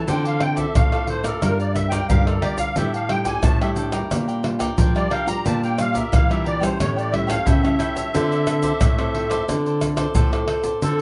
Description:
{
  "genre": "samba and choro",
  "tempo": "89 BPM",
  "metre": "4/4",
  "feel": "straight",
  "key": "D minor",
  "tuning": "A4 = 440 Hz",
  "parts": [
    { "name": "musette accordion", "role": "second line", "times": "0.0-11.0 s", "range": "A4 to Bb5", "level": "-28 LUFS", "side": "equal", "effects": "none" },
    { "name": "cavaquinho", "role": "accompaniment", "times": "0.0-11.0 s", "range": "D4 to G5", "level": "-32 LUFS", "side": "equal", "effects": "none" },
    { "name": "nylon-string guitar", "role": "accompaniment", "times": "0.0-11.0 s", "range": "A2 to Bb4", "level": "-29 LUFS", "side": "equal", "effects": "none" },
    { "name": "nylon-string guitar", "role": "bass", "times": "0.0-11.0 s", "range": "G2 to F3", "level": "-26 LUFS", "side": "equal", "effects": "none" },
    { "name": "tube shaker, surdo, pandeiro and tamborim", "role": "percussion", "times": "0.1-11.0 s", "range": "none", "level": "-24 LUFS", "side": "equal", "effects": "none" }
  ],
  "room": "light reverb",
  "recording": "nothing above 10.6 kHz",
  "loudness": "-21 LUFS",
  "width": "mono",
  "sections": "0.0-10.8 A section",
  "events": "accordion solo 0.0-10.8",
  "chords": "0.1 Dm7; 1.4 Gm7; 2.8 A7sus4; 4.1 Bb6; 5.5 Gm7/Bb; 6.8 A7; 8.1 Dm7",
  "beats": "| 0.08 0.75 1.42 2.10 | 2.77 3.44 4.11 4.78 | 5.46 6.13 6.80 7.47 | 8.14 8.81 9.48 10.15 | 10.83"
}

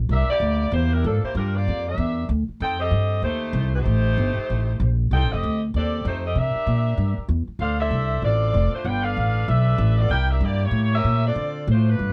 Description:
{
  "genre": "jazz, big band swing",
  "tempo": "192 BPM",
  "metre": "4/4",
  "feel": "swing 61% on 8ths",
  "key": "C major",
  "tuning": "A4 = 440 Hz",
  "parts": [
    { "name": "upright bass", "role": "bass", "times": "0.0-12.1 s", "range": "F1 to D3", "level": "-23 LUFS", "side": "equal", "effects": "none" },
    { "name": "mellow saxophone section", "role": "melody", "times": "0.1-12.1 s", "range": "F3 to G5", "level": "-28 LUFS", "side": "equal", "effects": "none" }
  ],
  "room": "little or no reverb",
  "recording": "dark, warm production",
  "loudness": "-22 LUFS",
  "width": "mono",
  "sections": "0.0-12.1 A section",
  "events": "none",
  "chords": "0.1 C9; 1.4 Gm7; 2.0 Gm6; 2.6 F9; 6.3 C9; 7.6 Dm7; 8.8 G9; 10.1 C9; 10.7 A7b9; 11.4 Dm7",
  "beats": "| 0.10 0.41 0.73 1.04 | 1.35 1.66 1.97 2.29 | 2.60 2.91 3.22 3.53 | 3.85 4.16 4.47 4.78 | 5.10 5.41 5.72 6.03 | 6.35 6.66 6.97 7.29 | 7.60 7.91 8.22 8.54 | 8.85 9.16 9.48 9.79 | 10.10 10.42 10.73 11.04 | 11.36 11.67 11.98"
}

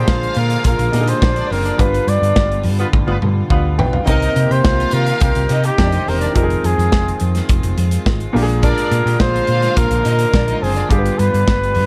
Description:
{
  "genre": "disco",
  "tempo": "105 BPM",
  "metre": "4/4",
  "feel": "straight",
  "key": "unclear",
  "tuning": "A4 = 443 Hz",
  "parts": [
    { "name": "warm flugelhorn", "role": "melody", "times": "0.0-11.9 s", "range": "G4 to D5", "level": "-22 LUFS", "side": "equal", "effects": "tape echo" },
    { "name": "warm symphonic violin section", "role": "second line", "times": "0.0-10.9 s", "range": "C4 to G5", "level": "-26 LUFS", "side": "equal", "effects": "none" },
    { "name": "clear baby grand piano", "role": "accompaniment", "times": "0.0-11.9 s", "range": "Bb2 to G5", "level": "-26 LUFS", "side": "equal", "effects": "none" },
    { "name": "warm studio string section", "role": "sustained chords", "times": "0.0-11.9 s", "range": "D3 to G4", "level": "-28 LUFS", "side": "equal", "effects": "none" },
    { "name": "hollow-body short-scale fingered electric bass", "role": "bass", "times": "0.0-11.9 s", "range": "E1 to C3", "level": "-20 LUFS", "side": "equal", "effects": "none" },
    { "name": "modern studio drum kit", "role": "drums", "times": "0.1-11.9 s", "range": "hi-hat, kick drum, snare drum, toms", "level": "-21 LUFS", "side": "equal", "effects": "none" },
    { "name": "dark horn section", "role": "stabs", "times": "2.8-3.9 s", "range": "G3 to B4", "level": "-27 LUFS", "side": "equal", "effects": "none" }
  ],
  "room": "small room ambience",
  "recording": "dark, warm production",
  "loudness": "-16 LUFS",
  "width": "mono",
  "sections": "0.0-11.9 A section",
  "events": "band accent 1.8-4.1; drum fill 2.9-4.1",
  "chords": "0.0 Bb7; 1.8 G7; 4.1 Cm7; 6.4 Fm7; 8.3 Bb7; 10.9 G7",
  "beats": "0.07 0.65 1.22 | 1.79 2.36 2.93 3.50 | 4.07 4.64 5.21 5.78 | 6.35 6.92 7.49 8.06 | 8.63 9.20 9.77 10.34 | 10.90 11.47"
}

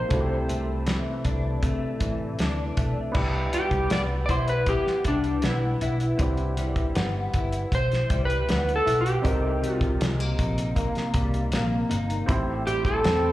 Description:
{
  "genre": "indie pop, bedroom pop",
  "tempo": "79 BPM",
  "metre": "4/4",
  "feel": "straight",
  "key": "C major",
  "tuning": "A4 = 438 Hz",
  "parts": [
    { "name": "electric slide guitar", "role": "melody", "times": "0.0-13.3 s", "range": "D4 to D5", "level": "-27 LUFS", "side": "equal", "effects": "lush chorus, slapback echo, tape echo" },
    { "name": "fingerpicked plugged-in steel-string acoustic guitar", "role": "accompaniment", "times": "0.0-13.3 s", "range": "A2 to E4", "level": "-30 LUFS", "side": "left 1 dB", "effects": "ensemble chorus, vibrato effect, slapback echo" },
    { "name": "warm upright piano", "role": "accompaniment", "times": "0.0-13.3 s", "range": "A3 to C5", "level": "-34 LUFS", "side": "right 1 dB", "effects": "cassette tape, slapback echo" },
    { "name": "vintage muted fingered electric bass", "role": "bass", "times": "0.0-13.3 s", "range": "G1 to C3", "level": "-27 LUFS", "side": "equal", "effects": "none" },
    { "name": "cloth-damped thuddy drum kit", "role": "drums", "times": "0.1-13.2 s", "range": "crash cymbal, hi-hat, kick drum, snare drum", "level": "-28 LUFS", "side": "equal", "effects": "none" }
  ],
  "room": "light reverb, small room ambience",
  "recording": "live gig heard through the venue's PA, club reverb",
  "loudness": "-22 LUFS",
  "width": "side -15 dB against mid",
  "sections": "0.0-3.2 A section; 3.2-13.3 B section",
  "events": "electric slide guitar solo 3.2-13.3",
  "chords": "0.1 C69; 3.2 Cmaj7; 9.2 Abmaj9 (rootless); 12.3 Am7",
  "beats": "| 0.11 0.87 1.63 2.39 | 3.15 3.91 4.67 5.44 | 6.20 6.96 7.72 8.48 | 9.24 10.00 10.76 11.52 | 12.28 13.04"
}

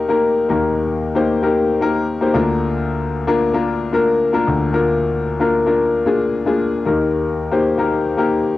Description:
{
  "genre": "pop",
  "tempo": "113 BPM",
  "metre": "4/4",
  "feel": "straight",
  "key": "unclear",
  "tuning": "A4 = 440 Hz",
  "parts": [
    { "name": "warm grand piano", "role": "solo", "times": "0.0-8.6 s", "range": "D2 to C5", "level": "-15 LUFS", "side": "left 2 dB", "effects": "cassette tape" }
  ],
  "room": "moderate studio ambience, RT60 0.5 s",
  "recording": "home recording on cassette",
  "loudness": "-15 LUFS",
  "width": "side -15 dB against mid",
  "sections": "0.0-8.6 A section",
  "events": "none",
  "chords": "0.0 Eb; 2.3 Bb/D; 6.9 Eb",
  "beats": "| 0.49 1.02 1.55 2.08 | 2.61 3.14 3.67 4.21 | 4.74 5.27 5.80 6.33 | 6.86 7.39 7.92 8.45"
}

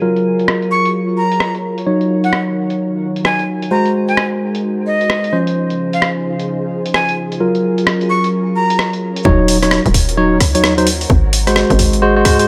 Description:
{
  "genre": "UK garage, two-step garage",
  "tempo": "130 BPM",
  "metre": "4/4",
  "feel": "swing 62% on 16ths",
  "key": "Eb dorian",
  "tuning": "A4 = 439 Hz",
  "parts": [
    { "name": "soft string machine", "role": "sustained chords", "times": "0.0-12.5 s", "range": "Db3 to Db5", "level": "-29 LUFS", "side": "equal", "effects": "phaser, ensemble chorus, sidechain pumping" },
    { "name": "bright tine electric piano", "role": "stabs", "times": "0.0-12.5 s", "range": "F3 to Db5", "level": "-18 LUFS", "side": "equal", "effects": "dub echo" },
    { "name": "breakbeat sampler-style drum kit", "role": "drums", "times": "0.2-12.5 s", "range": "hi-hat, rim click", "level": "-20 LUFS", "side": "equal", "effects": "low-pass filter on hats, low-pass filter on snare" },
    { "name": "breathy bright jazz flute", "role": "melody", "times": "0.7-8.9 s", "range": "Eb5 to Db6", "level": "-22 LUFS", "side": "equal", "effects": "dub echo" },
    { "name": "hollow knocking FM bass", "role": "bass", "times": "9.3-12.5 s", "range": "Eb1 to Ab2", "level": "-19 LUFS", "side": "equal", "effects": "tube saturation" },
    { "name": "electronic kick drum", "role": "drums", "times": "9.3-12.4 s", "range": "none", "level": "-16 LUFS", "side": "equal", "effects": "none" }
  ],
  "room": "light reverb",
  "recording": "none",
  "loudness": "-15 LUFS",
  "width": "mono",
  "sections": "0.0-9.3 A section; 9.3-12.5 B section",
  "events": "filter sweep on string machine 0.0-9.3; drop 9.3-12.5",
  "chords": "0.0 Gbmaj7; 1.9 Ebm7; 3.7 Ab7; 5.3 Dbmaj7; 7.4 Gbmaj7; 9.3 Ebm7; 11.1 Ab7",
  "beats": "| 0.02 0.48 0.94 1.41 | 1.87 2.33 2.79 3.25 | 3.71 4.17 4.63 5.10 | 5.56 6.02 6.48 6.94 | 7.41 7.87 8.33 8.79 | 9.25 9.71 10.17 10.63 | 11.10 11.56 12.02"
}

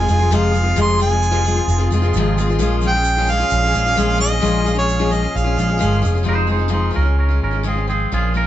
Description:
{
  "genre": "folk rock and heartland rock",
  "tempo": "131 BPM",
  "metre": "4/4",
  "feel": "straight",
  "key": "F minor",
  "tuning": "A4 = 440 Hz",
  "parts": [
    { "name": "warm harmonica", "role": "melody", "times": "0.0-6.0 s", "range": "Db5 to C6", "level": "-19 LUFS", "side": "right 2 dB", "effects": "none" },
    { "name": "picked steel-string acoustic guitar", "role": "accompaniment", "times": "0.0-8.5 s", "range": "F2 to F4", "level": "-21 LUFS", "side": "left 4 dB", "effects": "none" },
    { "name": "musette accordion", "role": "sustained chords", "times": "0.0-6.2 s", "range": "Bb3 to Ab4", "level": "-28 LUFS", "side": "equal", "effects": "none" },
    { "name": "picked electric bass", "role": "bass", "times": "0.0-8.5 s", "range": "F1 to Db2", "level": "-18 LUFS", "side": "equal", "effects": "none" },
    { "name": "egg shaker", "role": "percussion", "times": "0.1-6.2 s", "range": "none", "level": "-36 LUFS", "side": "right 6 dB", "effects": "none" },
    { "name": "twangy electric guitar", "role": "second line", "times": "6.3-8.5 s", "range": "C4 to C5", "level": "-22 LUFS", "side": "right 3 dB", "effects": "warbly pitch drift" }
  ],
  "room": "moderate studio reverb, RT60 0.6 s",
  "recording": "band playing live in one room, nothing above 7.9 kHz",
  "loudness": "-15 LUFS",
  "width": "side -12 dB against mid",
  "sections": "0.0-6.3 A section; 6.3-8.5 B section",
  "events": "none",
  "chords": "0.0 Fm; 2.6 Bbm7; 6.3 Fm; 7.0 Db",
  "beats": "0.32 | 0.77 1.23 1.69 2.14 | 2.60 3.06 3.52 3.98 | 4.43 4.89 5.35 5.81 | 6.28 6.74 7.20 7.66 | 8.13"
}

